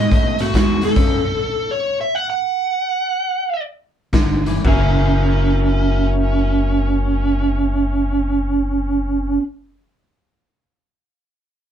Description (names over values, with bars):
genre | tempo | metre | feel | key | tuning
electric blues shuffle | 114-142 BPM | 4/4 | swing 65% on 8ths | F# mixolydian | A4 = 440 Hz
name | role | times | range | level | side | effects
smooth overdriven lead guitar | melody | 0.0-9.4 s | C#4 to F#5 | -19 LUFS | right 2 dB | none
electric guitar through a small old amp | riff | 0.0-1.2, 4.1-9.4 s | F#2 to G#4 | -23 LUFS | left 1 dB | none
upright bass | bass | 0.0-1.3, 4.1-9.4 s | F#1 to G#2 | -20 LUFS | equal | none
raw garage drum kit | drums | 0.1-1.1, 4.1-4.8 s | crash cymbal, hi-hat, kick drum, snare drum | -19 LUFS | equal | none
room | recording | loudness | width
moderate small room ambience, RT60 0.5 s | band playing live in one room | -16 LUFS | side -9 dB against mid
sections
0.0-4.7 A section; 4.7-8.9 B section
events
slowing down 1.0-4.7; stop 1.0-4.1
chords
0.0 B6; 1.0 F#5; 4.1 G5; 4.7 F#9